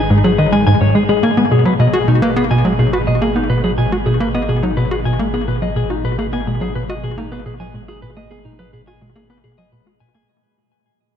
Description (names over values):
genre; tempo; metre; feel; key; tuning
ambient, sequencer-driven space music; 106 BPM; 4/4; straight; unclear; A4 = 440 Hz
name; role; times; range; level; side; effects
clean electric guitar; arpeggios; 0.0-10.3 s; G#3 to G#5; -20 LUFS; moving between left 7 dB and right 1 dB; auto-pan, ping-pong delay
warm sub bass; bass; 0.0-10.3 s; G#1; -28 LUFS; right 1 dB; none
tight sequencer bass; riff; 0.1-10.2 s; G#2 to F#4; -15 LUFS; equal; ping-pong delay
room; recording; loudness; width
wet cathedral reverb, RT60 6.7 s; in a vast, echoing space; -13 LUFS; side -8 dB against mid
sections
0.0-10.3 A section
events
fade-out 1.2-10.3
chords
0.0 G#5; 1.2 B/G#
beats
0.10 0.67 | 1.24 1.80 2.37 2.93 | 3.50 4.07 4.63 5.20 | 5.76 6.33 6.89 7.46 | 8.03 8.59 9.16 9.72